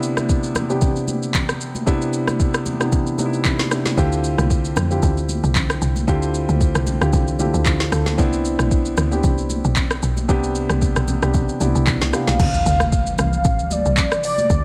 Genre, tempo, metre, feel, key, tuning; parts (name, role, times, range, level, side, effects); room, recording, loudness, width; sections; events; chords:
amapiano; 114 BPM; 4/4; swing 55% on 16ths; D dorian; A4 = 440 Hz
dark baby grand piano; accompaniment; 0.0-12.4 s; C3 to A4; -24 LUFS; equal
smooth R&B drum kit; drums; 0.0-14.6 s; crash cymbal, handclaps, hi-hat, kick drum, rim click, shaker, snare drum; -23 LUFS; equal; vintage 12-bit sampler grit
congas; percussion; 0.2-14.6 s; -31 LUFS; equal
woody log drum bass; bass; 4.0-14.6 s; A1 to F2; -23 LUFS; equal
warm velvety synth lead; melody; 12.1-14.6 s; D5 to F5; -24 LUFS; equal; chorus, tape echo
hollow soft pad; sustained chords; 12.4-14.6 s; C3 to A3; -31 LUFS; equal; ensemble chorus, sidechain pumping
impact; sound effects; 12.4-14.5 s; -31 LUFS; equal
little or no reverb; -19 LUFS; mono
0.0-12.4 A section; 12.4-14.6 B section
drop 12.4-14.6; impact 12.4-14.5
0.0 Cmaj9; 4.0 Dm11; 8.2 Cmaj9; 12.4 Dm11